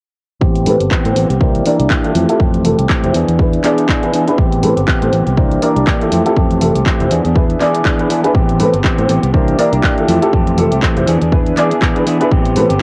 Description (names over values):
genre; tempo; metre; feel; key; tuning
filtered disco house; 121 BPM; 4/4; swing 57% on 16ths; A minor; A4 = 442 Hz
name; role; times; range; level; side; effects
semi-hollow electric guitar; riff; 0.4-12.8 s; E3 to G#4; -19 LUFS; equal; sidechain pumping, low-pass filter, cassette tape
fingered electric bass; bass; 0.4-12.8 s; F1 to A2; -19 LUFS; equal; tube saturation, sidechain pumping, low-pass filter
electronic kick drum; drums; 0.4-12.4 s; none; -17 LUFS; equal; none
house drum kit; drums; 0.6-12.8 s; handclaps, hi-hat; -25 LUFS; equal; none
warm grand piano; accompaniment; 0.7-12.7 s; C4 to D5; -19 LUFS; equal; phaser, vintage 12-bit sampler grit, sidechain pumping, low-pass filter, cassette tape
room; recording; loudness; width
light reverb, digital ambience; home recording on cassette; -14 LUFS; mono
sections
0.4-12.8 A section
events
filter sweep 0.4-12.8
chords
0.4 Am9; 1.4 C9; 2.2 Fmaj9; 3.1 E7; 4.4 Am9; 5.4 C9; 6.1 Fmaj9; 7.1 E7; 8.3 Am9; 9.3 C9; 10.1 Fmaj9; 11.1 E7; 12.3 Am9